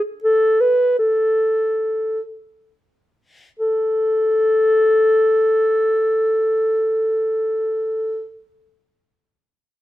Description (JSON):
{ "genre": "classical, baroque-style fantasia for unaccompanied clarinet", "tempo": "free time", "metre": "none", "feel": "none", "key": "unclear", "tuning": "A4 = 440 Hz", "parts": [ { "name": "dark clarinet", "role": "solo", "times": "0.0-8.3 s", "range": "A4 to B4", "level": "-16 LUFS", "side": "equal", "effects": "none" } ], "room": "light reverb", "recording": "none", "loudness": "-16 LUFS", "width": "side -14 dB against mid", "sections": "0.0-3.6 A section; 3.6-8.8 B section", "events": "slowing down 0.0-3.6", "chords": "none" }